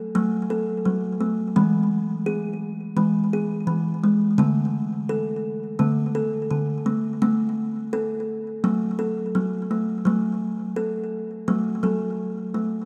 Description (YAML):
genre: world meditative, meditative tuned percussion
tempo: 85 BPM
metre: 4/4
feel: straight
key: F# minor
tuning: A4 = 440 Hz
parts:
  - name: kalimba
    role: solo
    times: 0.0-12.9 s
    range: D3 to A4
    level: -24 LUFS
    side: equal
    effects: delay
room: wet church reverb, RT60 3.2 s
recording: dark, warm production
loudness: -24 LUFS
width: mono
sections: 0.0-10.1 A section; 10.1-12.9 B section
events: none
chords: 0.0 F#m; 1.6 E; 4.4 D5; 7.2 N.C.; 8.6 F#m